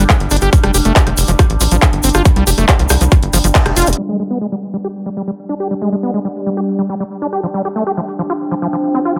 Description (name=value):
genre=psychedelic trance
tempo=139 BPM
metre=4/4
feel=straight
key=unclear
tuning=A4 = 441 Hz
part: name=overtone-sweeping drone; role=sustained chords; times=0.0-9.2 s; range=G3 to D4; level=-24 LUFS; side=equal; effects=chorus, built-in reverb, sidechain pumping
part: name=overdriven acid bass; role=riff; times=0.0-9.2 s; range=E3 to G4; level=-21 LUFS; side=equal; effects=distortion, sidechain pumping, tape echo
part: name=tight sequencer bass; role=bass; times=0.0-3.9 s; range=F1 to C2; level=-17 LUFS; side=equal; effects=none
part: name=big-room dance drum kit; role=drums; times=0.1-4.0 s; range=handclaps, hi-hat, rim click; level=-20 LUFS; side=equal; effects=low-pass filter on snare, small room ambience, low-pass filter on hats
part: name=electronic kick drum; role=drums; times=0.1-3.6 s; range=none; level=-14 LUFS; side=equal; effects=small room ambience
part: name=tube shaker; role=percussion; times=0.1-9.2 s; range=none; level=-24 LUFS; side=equal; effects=none
part: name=deep dark ambient pad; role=texture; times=5.1-9.2 s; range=F4 to G5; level=-27 LUFS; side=equal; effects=chorus, built-in reverb, sidechain pumping
room=light reverb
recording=low-pass filter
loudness=-15 LUFS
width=mono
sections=0.0-4.0 A section; 4.0-9.2 B section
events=band accent 3.5; drum fill 3.8; filter sweep on acid bass 4.0-9.2; filter sweep on synth drone 4.0-9.2; filter sweep 4.0-9.2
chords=0.0 G5; 0.5 F5; 4.0 G5; 7.4 F5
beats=0.10 | 0.53 0.96 1.39 1.82 | 2.25 2.69 3.12 3.55 | 3.98 4.41 4.84 5.28 | 5.71 6.14 6.57 7.00 | 7.43 7.87 8.30 8.73 | 9.16